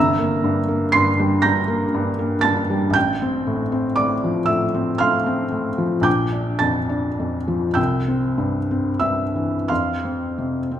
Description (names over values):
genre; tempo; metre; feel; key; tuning
classical, romantic nocturne for solo piano; 29-42 BPM (dotted quarters); 6/8; rubato; F major; A4 = 438 Hz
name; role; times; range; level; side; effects
felt-muted upright piano; solo; 0.0-10.8 s; G1 to C7; -18 LUFS; equal; none
room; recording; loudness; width
wet recital hall reverb, RT60 1.5 s; minimal, uncompressed stereo recording; -18 LUFS; side -10 dB against mid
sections
0.0-10.8 A section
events
none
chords
0.0 Edim/G; 3.0 F/A; 6.1 Gm7/Bb; 7.8 C; 9.7 F5